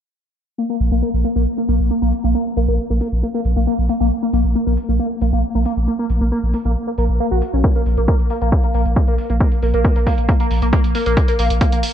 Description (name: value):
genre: driving peak-time techno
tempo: 136 BPM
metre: 4/4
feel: straight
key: unclear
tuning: A4 = 440 Hz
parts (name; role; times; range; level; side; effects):
- overdriven synth lead; riff; 0.6-11.8 s; Bb3 to Gb4; -20 LUFS; equal; phaser, tube saturation, sidechain pumping, ping-pong delay
- saturated sub bass; bass; 0.8-11.8 s; Bb1; -19 LUFS; equal; tube saturation, sidechain pumping, low-pass filter
- electronic hi-hat; drums; 0.8-11.9 s; none; -31 LUFS; right 3 dB; sidechain pumping on hats, low-pass filter on hats, low-pass filter on room
- electronic kick drum; drums; 7.6-11.7 s; none; -16 LUFS; equal; none
room: moderate lush hall reverb, RT60 2.1 s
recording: bright 1980s-style digital production, low-pass filter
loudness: -15 LUFS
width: side -9 dB against mid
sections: 0.6-11.9 A section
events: filter sweep on drum 0.6-11.9; filter sweep on analog synth lead 0.6-11.9; filter sweep 0.6-11.9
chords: none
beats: | 0.58 1.02 1.46 1.91 | 2.35 2.79 3.23 3.67 | 4.11 4.55 4.99 5.43 | 5.88 6.32 6.76 7.20 | 7.64 8.08 8.52 8.96 | 9.40 9.85 10.29 10.73 | 11.17 11.61